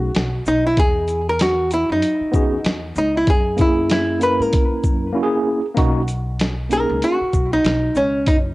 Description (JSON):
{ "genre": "hip hop, jazz-hop", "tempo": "96 BPM", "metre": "4/4", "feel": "swing 59% on 16ths", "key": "B major", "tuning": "A4 = 441 Hz", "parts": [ { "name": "archtop guitar, miked and amplified", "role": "melody", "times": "0.0-8.4 s", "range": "C#4 to B4", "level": "-19 LUFS", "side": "equal", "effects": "none" }, { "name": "tine electric piano", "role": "accompaniment", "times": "0.0-7.2 s", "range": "A#3 to A#4", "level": "-21 LUFS", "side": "equal", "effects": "overdrive, medium stereo tremolo, cassette tape" }, { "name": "upright bass", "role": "bass", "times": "0.0-8.5 s", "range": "F#1 to G#2", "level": "-25 LUFS", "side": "equal", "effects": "none" }, { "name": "boom bap sampler-style drum kit", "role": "drums", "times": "0.1-8.4 s", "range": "hi-hat, kick drum, shaker, snare drum", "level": "-19 LUFS", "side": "equal", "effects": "cassette tape" } ], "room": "light reverb", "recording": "home recording on cassette", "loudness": "-16 LUFS", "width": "side -20 dB against mid", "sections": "0.0-5.8 A section; 5.8-8.5 B section", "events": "drums muted 5.1-5.8; hollow-body jazz guitar solo 5.8-8.5", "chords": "0.0 B69; 0.8 Esus2; 3.3 F#9; 5.8 Bmaj7" }